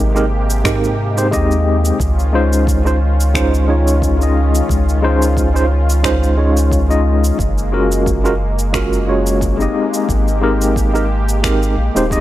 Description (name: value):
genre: sunset chillout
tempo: 89 BPM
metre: 4/4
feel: swing 54% on 16ths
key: Db major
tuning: A4 = 440 Hz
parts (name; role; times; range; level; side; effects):
- tine electric piano; accompaniment; 0.0-12.2 s; Ab3 to Eb5; -17 LUFS; moving between left 5 dB and right 4 dB; medium tremolo, auto-pan, tape echo
- lush unison pad; sustained chords; 0.0-12.2 s; C3 to G4; -24 LUFS; equal; chorus
- round analog bass; bass; 0.0-12.2 s; Eb1 to Ab2; -16 LUFS; equal; none
- electronic shaker and finger snaps; drums; 0.2-12.2 s; none; -24 LUFS; equal; none
- electronic kick drum; drums; 0.6-12.2 s; none; -21 LUFS; equal; none
room: little or no reverb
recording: dry, gritty hardware recording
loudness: -12 LUFS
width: side -14 dB against mid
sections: 0.0-12.2 A section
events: none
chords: 0.0 Abmaj9; 2.0 Dbmaj9; 7.4 Gbmaj9; 9.8 Abmaj9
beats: 0.65 1.32 | 2.00 2.67 3.35 4.02 | 4.69 5.37 6.04 6.72 | 7.39 8.06 8.74 9.41 | 10.09 10.76 11.44 12.11